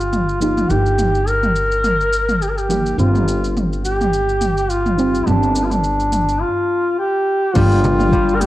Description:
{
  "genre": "organic downtempo",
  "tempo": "105 BPM",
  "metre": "4/4",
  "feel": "swing 56% on 16ths",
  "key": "unclear",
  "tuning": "A4 = 440 Hz",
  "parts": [
    { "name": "mellow duduk", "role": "melody", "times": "0.0-8.5 s", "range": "D4 to Bb4", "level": "-18 LUFS", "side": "equal", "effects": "ping-pong delay" },
    { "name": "deep mellow chord stab", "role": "accompaniment", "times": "0.0-8.5 s", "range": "Eb3 to G4", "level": "-22 LUFS", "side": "right 2 dB", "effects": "analog chorus, sidechain pumping, ping-pong delay" },
    { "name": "upright bass", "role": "bass", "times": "0.0-8.5 s", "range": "G1", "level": "-20 LUFS", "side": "equal", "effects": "tube saturation, sidechain pumping" },
    { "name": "organic electronic drum kit", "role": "drums", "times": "0.0-8.5 s", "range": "crash cymbal, hi-hat, shaker, toms", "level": "-24 LUFS", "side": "equal", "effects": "overdrive" },
    { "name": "concert harp", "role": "arpeggios", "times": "7.6-8.5 s", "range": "G3", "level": "-20 LUFS", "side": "left 3 dB", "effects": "none" },
    { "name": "electronic kick drum", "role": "drums", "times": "7.6-8.3 s", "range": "none", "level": "-19 LUFS", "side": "equal", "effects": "overdrive" },
    { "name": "frame drum", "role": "percussion", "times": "7.8-8.0 s", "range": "none", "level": "-24 LUFS", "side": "right 1 dB", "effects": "none" }
  ],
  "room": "light reverb, studio ambience",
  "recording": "worn, warbling old tape, cassette tape, warbly pitch drift",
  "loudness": "-15 LUFS",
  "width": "side -15 dB against mid",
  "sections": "0.0-7.6 A section",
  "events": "filter sweep on synth stab 0.0-7.6",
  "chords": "0.0 Ebadd9/G; 3.0 Cm/G; 7.6 Gm7",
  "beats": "0.13 | 0.70 1.27 1.84 2.41 | 2.98 3.56 4.13 4.70 | 5.27 5.84 6.41 6.99 | 7.56 8.13"
}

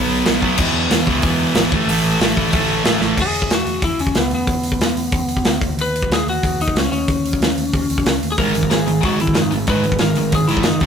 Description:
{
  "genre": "punk rock",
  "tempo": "185 BPM",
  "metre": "4/4",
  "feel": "straight",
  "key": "unclear",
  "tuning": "A4 = 441 Hz",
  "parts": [
    { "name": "sludgy distorted guitar", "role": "riff", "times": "0.0-3.2, 8.4-10.9 s", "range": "E2 to B3", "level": "-18 LUFS", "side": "right 4 dB", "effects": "overdrive" },
    { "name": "tight distorted guitar", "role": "riff", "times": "0.0-3.2, 8.4-10.9 s", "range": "E2 to B3", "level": "-23 LUFS", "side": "left 9 dB", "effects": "distortion" },
    { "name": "picked electric bass", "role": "bass", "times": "0.0-10.9 s", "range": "E1 to D#2", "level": "-26 LUFS", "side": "equal", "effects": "none" },
    { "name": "big rock drum kit", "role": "drums", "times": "0.3-10.9 s", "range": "crash cymbal, hi-hat, kick drum, snare drum", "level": "-18 LUFS", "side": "equal", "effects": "none" },
    { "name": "lightly driven lead guitar", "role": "melody", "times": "3.2-10.8 s", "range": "B3 to B4", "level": "-21 LUFS", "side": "left 2 dB", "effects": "tape echo" }
  ],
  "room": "light reverb",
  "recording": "rough rehearsal-room recording, tube saturation",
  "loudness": "-15 LUFS",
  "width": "side -7 dB against mid",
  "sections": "0.0-3.2 A section; 3.2-10.9 B section",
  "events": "drum fill 3.0",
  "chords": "0.0 B5; 0.6 E5; 1.7 A5; 3.2 E5; 5.6 N.C.; 8.4 G#5",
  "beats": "0.26 | 0.59 0.91 1.23 1.56 | 1.88 2.20 2.53 2.85 | 3.18 3.50 3.83 4.15 | 4.48 4.80 5.13 5.45 | 5.78 6.11 6.43 6.75 | 7.08 7.41 7.73 8.06 | 8.38 8.71 9.03 9.36 | 9.68 10.01 10.33 10.66"
}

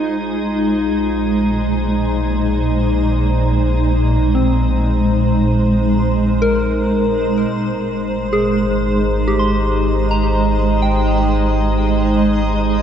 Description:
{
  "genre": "ambient",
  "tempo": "free time",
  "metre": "none",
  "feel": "none",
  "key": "Ab major",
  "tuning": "A4 = 439 Hz",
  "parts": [
    { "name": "granular cloud pad", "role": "sustained chords", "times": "0.0-12.8 s", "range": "Bb2 to Eb5", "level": "-18 LUFS", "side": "right 1 dB", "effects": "built-in reverb" },
    { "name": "warm sub bass", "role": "bass", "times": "0.0-12.8 s", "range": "Ab1 to Bb1", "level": "-20 LUFS", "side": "equal", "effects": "none" },
    { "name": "organ-like drone", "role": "drone", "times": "0.0-12.8 s", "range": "Ab3 to Eb4", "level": "-22 LUFS", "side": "right 1 dB", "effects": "ensemble chorus, built-in reverb" },
    { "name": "soft synth bell", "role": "arpeggios", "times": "4.3-12.8 s", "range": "C4 to C6", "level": "-22 LUFS", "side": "left 2 dB", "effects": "chorus, phaser, ping-pong delay" }
  ],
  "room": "moderate lush hall reverb, RT60 2.7 s",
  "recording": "dark, warm production, nothing above 7.7 kHz",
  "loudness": "-14 LUFS",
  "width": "side -8 dB against mid",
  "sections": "0.0-7.5 A section; 7.5-12.8 B section",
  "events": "fade-in on sub bass 0.0-7.5",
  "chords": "0.0 Bb9sus4; 7.5 Ab",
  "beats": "free time"
}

